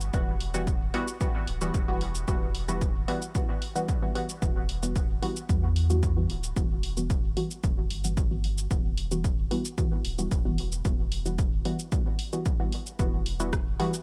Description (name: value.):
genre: dub techno.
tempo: 112 BPM.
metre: 4/4.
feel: straight.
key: E minor.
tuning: A4 = 441 Hz.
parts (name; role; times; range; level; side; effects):
pure sine sub bass; bass; 0.0-13.8 s; D1 to E2; -33 LUFS; equal; sidechain pumping.
punchy analog drum machine; drums; 0.0-14.0 s; hi-hat, rim click, shaker; -40 LUFS; equal; none.
filtered dub chord stab; stabs; 0.1-13.9 s; E3 to F#4; -35 LUFS; equal; chorus, phaser, sidechain pumping, dub echo.
electronic kick drum; drums; 0.1-13.6 s; none; -30 LUFS; equal; none.
room: little or no reverb.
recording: none.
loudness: -28 LUFS.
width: mono.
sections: 0.0-14.0 A section.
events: none.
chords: 0.0 Emadd9.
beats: | 0.14 0.67 1.21 1.74 | 2.28 2.81 3.35 3.89 | 4.42 4.96 5.49 6.03 | 6.57 7.10 7.64 8.17 | 8.71 9.24 9.78 10.31 | 10.85 11.39 11.92 12.46 | 12.99 13.53.